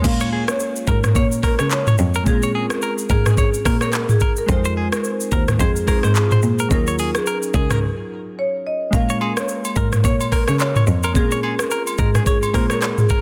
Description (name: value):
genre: afrobeats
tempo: 108 BPM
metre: 4/4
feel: swing 58% on 16ths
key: Bb minor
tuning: A4 = 440 Hz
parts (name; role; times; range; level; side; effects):
- glassy digital keys; accompaniment; 0.0-13.2 s; Gb3 to C5; -30 LUFS; equal; chorus
- clear cello; bass; 0.0-12.9 s; Db2 to Db3; -23 LUFS; equal; none
- afro-pop drum kit; drums; 0.0-13.2 s; crash cymbal, handclaps, hi-hat, kick drum, rim click, shaker, toms; -22 LUFS; equal; none
- marimba with medium mallets; melody; 0.1-13.1 s; Ab4 to F5; -27 LUFS; equal; none
- direct-recorded clean electric guitar; riff; 0.2-13.2 s; Ab4 to Db5; -29 LUFS; equal; none
- agogo bells and woodblock; percussion; 9.2-13.0 s; none; -32 LUFS; equal; none
room: little or no reverb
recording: dense, heavily limited modern master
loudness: -19 LUFS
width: mono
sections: 0.0-13.2 A section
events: break 7.8-8.9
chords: 0.0 Bbm9; 4.5 Fm7; 6.7 Ebm9; 8.9 Bbm9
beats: | 0.04 0.60 1.15 1.71 | 2.26 2.82 3.38 3.93 | 4.49 5.04 5.60 6.15 | 6.71 7.26 7.82 8.38 | 8.93 9.49 10.04 10.60 | 11.15 11.71 12.26 12.82